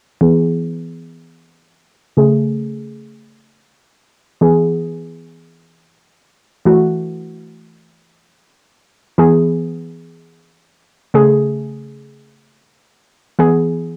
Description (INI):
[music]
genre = pop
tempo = free time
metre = none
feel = none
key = E major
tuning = A4 = 441 Hz
[part]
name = soft round pluck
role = accompaniment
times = 0.2-14.0 s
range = C#3 to G#4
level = -15 LUFS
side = equal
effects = chorus, low-pass filter
[sound]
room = moderate studio reverb, RT60 0.6 s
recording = home recording on cassette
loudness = -16 LUFS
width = mono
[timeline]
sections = 0.2-14.0 A section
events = filter sweep on synth pluck 0.2-14.0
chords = 0.2 E; 2.2 Amaj7; 4.4 E; 6.7 F#m7; 9.2 E; 11.1 Amaj7; 13.4 E